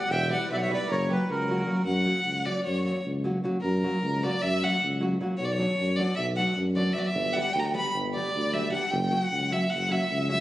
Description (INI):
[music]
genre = balkan folk, Balkan wedding band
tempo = 306 BPM (eighths)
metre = 9/8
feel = straight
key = F# phrygian dominant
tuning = A4 = 440 Hz
[part]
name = accordion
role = melody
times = 0.0-1.8 s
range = A#4 to G5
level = -29 LUFS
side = right 1 dB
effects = none
[part]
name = clear violin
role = second line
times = 0.0-10.4 s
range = F#4 to B5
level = -28 LUFS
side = equal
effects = none
[part]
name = flamenco guitar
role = accompaniment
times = 0.0-10.4 s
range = F#3 to G4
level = -31 LUFS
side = equal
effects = none
[part]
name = mellow tuba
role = bass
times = 0.1-10.4 s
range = E1 to F#2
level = -30 LUFS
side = equal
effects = none
[sound]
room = wet recital hall reverb, RT60 1.7 s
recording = recorded on a phone in the room, club reverb, nothing above 10.6 kHz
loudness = -24 LUFS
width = side -15 dB against mid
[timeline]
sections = 0.0-1.9 A section; 1.9-10.4 B section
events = violin solo 1.9-10.4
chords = 0.1 Em; 0.9 F#; 5.4 Bm; 7.2 G; 8.9 F#